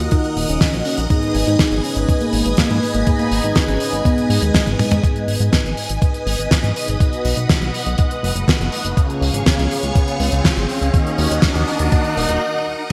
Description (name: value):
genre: italo disco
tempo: 122 BPM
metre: 4/4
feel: straight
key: unclear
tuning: A4 = 438 Hz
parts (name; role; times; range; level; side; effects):
- phased string machine; sustained chords; 0.0-12.9 s; Ab4 to Eb6; -27 LUFS; equal; ensemble chorus, phaser
- mellow synth brass; stabs; 0.0-12.4 s; Ab2 to F5; -26 LUFS; equal; chorus, cassette tape, digital delay
- chorused synth bass; bass; 0.0-12.4 s; Eb1 to Ab2; -23 LUFS; equal; tube saturation
- soft octave-layered synth lead; melody; 0.1-5.0 s; Ab3 to Eb4; -24 LUFS; equal; chorus, digital delay
- damped 70s drum kit; drums; 0.1-12.9 s; crash cymbal, hi-hat, snare drum, toms; -23 LUFS; equal; studio ambience, gated reverb
- electronic kick drum; drums; 0.1-12.0 s; none; -19 LUFS; equal; studio ambience
- riser; sound effects; 7.8-12.4 s; none; -30 LUFS; equal; none
room: moderate lush hall reverb, RT60 2.1 s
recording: bright 1980s-style digital production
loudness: -18 LUFS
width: mono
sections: 0.0-5.0 A section; 5.0-12.9 B section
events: drum fill 4.7-5.0; filter sweep on analog polysynth 5.0-12.9; riser 7.8-12.4; break 12.4-12.9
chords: 0.0 Ebm; 1.1 Abm; 7.0 B; 9.0 Db; 10.9 Ebm